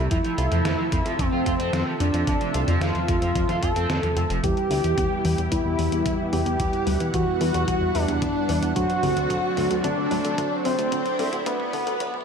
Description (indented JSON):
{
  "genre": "synthwave",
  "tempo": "111 BPM",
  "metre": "4/4",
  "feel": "straight",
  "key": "E minor",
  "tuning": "A4 = 437 Hz",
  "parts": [
    { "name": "lush unison pad", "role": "sustained chords", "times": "0.0-12.2 s", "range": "B2 to F#5", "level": "-31 LUFS", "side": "equal", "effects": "chorus, sidechain pumping" },
    { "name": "crunchy overdriven guitar", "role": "riff", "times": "0.0-4.4 s", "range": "F3 to F4", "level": "-31 LUFS", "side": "right 6 dB", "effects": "lush chorus, digital delay" },
    { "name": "chorused synth bass", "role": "bass", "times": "0.0-12.2 s", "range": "F1 to F2", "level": "-27 LUFS", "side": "equal", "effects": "sidechain pumping" },
    { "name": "wide unison lead", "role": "melody", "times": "0.1-12.2 s", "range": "B3 to A4", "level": "-26 LUFS", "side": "equal", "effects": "digital delay" },
    { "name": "detuned 8-bit digital drum machine", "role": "drums", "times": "0.1-12.2 s", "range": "hi-hat, snare drum, toms", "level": "-31 LUFS", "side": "left 1 dB", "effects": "studio reverb, gated reverb" },
    { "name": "electronic kick drum", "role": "drums", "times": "0.1-12.1 s", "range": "none", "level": "-29 LUFS", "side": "equal", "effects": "studio reverb" },
    { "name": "string machine, violins", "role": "second line", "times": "4.4-12.2 s", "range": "B3 to G4", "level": "-32 LUFS", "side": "equal", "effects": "ensemble chorus, digital delay" },
    { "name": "warbly dusty pluck", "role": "arpeggios", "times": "4.4-12.2 s", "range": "D3 to E5", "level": "-32 LUFS", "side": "left 4 dB", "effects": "chorus, cassette tape, digital delay" },
    { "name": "mellow synth brass", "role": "stabs", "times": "4.4-12.2 s", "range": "F#3 to D5", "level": "-32 LUFS", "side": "right 2 dB", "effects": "chorus, vintage 12-bit sampler grit, digital delay" }
  ],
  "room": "light reverb, digital ambience",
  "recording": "high-pass filter",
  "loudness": "-21 LUFS",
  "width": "side -6 dB against mid",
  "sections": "0.0-4.4 A section; 4.4-12.2 B section",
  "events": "kick drops out 3.9-4.4; drum fill 4.4-12.2",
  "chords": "0.1 Fmaj7; 4.4 Em; 8.8 D7",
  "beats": "| 0.11 0.65 1.19 1.73 | 2.27 2.81 3.35 3.90 | 4.44 4.98 5.52 6.06 | 6.60 7.14 7.68 8.22 | 8.76 9.30 9.84 10.38 | 10.92 11.46 12.00"
}